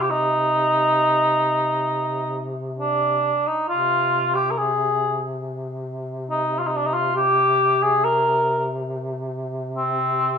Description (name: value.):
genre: caucasian folk, Caucasian lament.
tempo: 69 BPM.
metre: 4/4.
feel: rubato.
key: C minor.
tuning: A4 = 440 Hz.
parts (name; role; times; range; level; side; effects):
dark cor anglais; melody; 0.0-10.4 s; C4 to Bb4; -19 LUFS; equal; none.
mellow duduk; drone; 0.0-10.4 s; C3; -28 LUFS; left 1 dB; none.
room: moderate recital hall reverb, RT60 1.6 s.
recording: minimal, uncompressed stereo recording.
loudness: -19 LUFS.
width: side -7 dB against mid.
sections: 0.0-10.4 A section.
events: none.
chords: none.